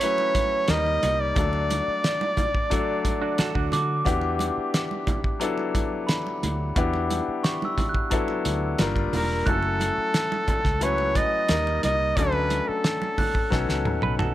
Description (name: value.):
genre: lush 1970s-style soul.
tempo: 89 BPM.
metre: 4/4.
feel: straight.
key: E dorian.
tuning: A4 = 440 Hz.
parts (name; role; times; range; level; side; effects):
clear flugelhorn; melody; 0.0-3.7, 9.2-14.0 s; A4 to D#5; -25 LUFS; right 1 dB; slapback echo.
warm concert grand piano; accompaniment; 0.0-14.3 s; F#3 to B4; -28 LUFS; left 4 dB; none.
cloth-damped thuddy drum kit; drums; 0.0-14.3 s; hi-hat, kick drum, snare drum, toms; -26 LUFS; equal; none.
congas; percussion; 0.0-14.3 s; none; -35 LUFS; right 4 dB; none.
glockenspiel with rubber mallets; texture; 0.0-13.8 s; B5 to B6; -33 LUFS; right 2 dB; none.
vintage muted fingered electric bass; bass; 0.7-14.3 s; E1 to D3; -28 LUFS; equal; none.
semi-hollow electric guitar; riff; 3.2-4.0, 14.0-14.3 s; D4 to B4; -29 LUFS; right 7 dB; none.
room: little or no reverb.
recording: none.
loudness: -22 LUFS.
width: side -13 dB against mid.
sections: 0.0-14.3 A section.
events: drum fill 13.5-14.3.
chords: 0.0 F#m7; 0.7 D#; 1.4 D; 4.1 Em9; 8.8 Gm7; 9.5 F#m7; 11.5 D#; 12.2 Dmaj7; 13.5 B9.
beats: 0.01 0.69 | 1.36 2.04 2.71 3.39 | 4.06 4.74 5.41 6.09 | 6.76 7.44 8.11 8.79 | 9.46 10.14 10.81 11.49 | 12.16 12.84 13.51 14.19.